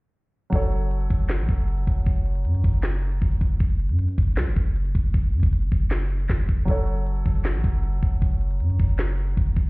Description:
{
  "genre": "hip hop, trap",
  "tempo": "156 BPM",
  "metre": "4/4",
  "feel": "half-time",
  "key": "F# minor",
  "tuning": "A4 = 441 Hz",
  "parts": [
    { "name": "dark concert grand piano", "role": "accompaniment", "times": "0.5-3.6, 6.7-9.7 s", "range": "F#3 to C#5", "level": "-33 LUFS", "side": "equal", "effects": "low-pass filter" },
    { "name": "long sustained 808-style bass", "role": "bass", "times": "0.5-9.7 s", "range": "F#1 to F#2", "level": "-23 LUFS", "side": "equal", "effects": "none" },
    { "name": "trap drum kit", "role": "drums", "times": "0.5-9.7 s", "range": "handclaps, hi-hat, kick drum, snare drum", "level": "-22 LUFS", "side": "equal", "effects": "none" }
  ],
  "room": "little or no reverb",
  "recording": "heard muffled through a wall, stone room reverb, EQ",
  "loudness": "-20 LUFS",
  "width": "side -25 dB against mid",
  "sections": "0.5-9.7 A section",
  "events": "none",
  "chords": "0.5 F#m; 3.6 F#5; 6.7 F#m"
}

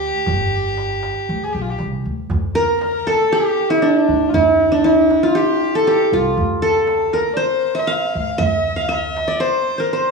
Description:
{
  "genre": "Arabic maqam ensemble",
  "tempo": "118 BPM",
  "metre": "4/4",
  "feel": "straight",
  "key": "D maqam bayati",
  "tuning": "A4 = 441 Hz",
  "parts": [
    { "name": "qanun", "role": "melody", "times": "0.0-10.1 s", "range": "D4 to F5", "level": "-16 LUFS", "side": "right 1 dB", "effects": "none" },
    { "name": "warm violin", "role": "second line", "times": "0.0-10.1 s", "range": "D4 to F5", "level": "-22 LUFS", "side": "left 3 dB", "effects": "none" },
    { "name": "upright bass", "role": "bass", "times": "0.0-9.3 s", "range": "G1 to D2", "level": "-25 LUFS", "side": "left 1 dB", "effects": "none" },
    { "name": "darbuka", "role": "percussion", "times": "0.3-10.1 s", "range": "none", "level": "-27 LUFS", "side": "right 3 dB", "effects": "none" }
  ],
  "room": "moderate large studio reverb, RT60 1.3 s",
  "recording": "band playing live in one room, studio reverb",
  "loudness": "-15 LUFS",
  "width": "side -4 dB against mid",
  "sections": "0.0-2.3 A section; 2.3-10.1 B section",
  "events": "drum fill 9.9",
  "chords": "none"
}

